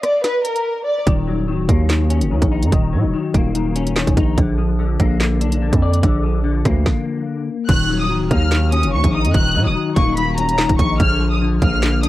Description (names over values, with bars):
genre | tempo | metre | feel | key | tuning
hip hop, drill | 145 BPM | 4/4 | half-time | Eb minor | A4 = 440 Hz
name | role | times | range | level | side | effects
warm studio violin section | melody | 0.0-1.0, 7.7-12.1 s | Bb4 to Gb6 | -20 LUFS | equal | low-pass filter, cassette tape, tape echo
drill drum kit | drums | 0.0-12.1 s | crash cymbal, handclaps, hi-hat, kick drum, rim click, snare drum | -18 LUFS | right 1 dB | none
clean electric guitar | accompaniment | 1.1-12.1 s | D3 to D5 | -21 LUFS | left 5 dB | ensemble chorus, low-pass filter, cassette tape
distorted 808-style bass | bass | 1.1-12.1 s | Db1 to Bb2 | -18 LUFS | right 1 dB | distortion
room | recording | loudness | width
light reverb | home recording on cassette | -15 LUFS | side -15 dB against mid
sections
0.0-7.7 A section; 7.7-12.1 B section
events
break 0.0-1.1; stop 6.9-7.7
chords
0.0 N.C.; 1.1 Ebm7; 4.4 Bb; 7.7 Ebm7; 11.0 Bb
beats
0.24 0.65 | 1.07 1.48 1.90 2.31 | 2.72 3.14 3.55 3.96 | 4.38 4.79 5.21 5.62 | 6.03 6.45 6.86 7.27 | 7.69 8.10 8.52 8.93 | 9.34 9.76 10.17 10.58 | 11.00 11.41 11.83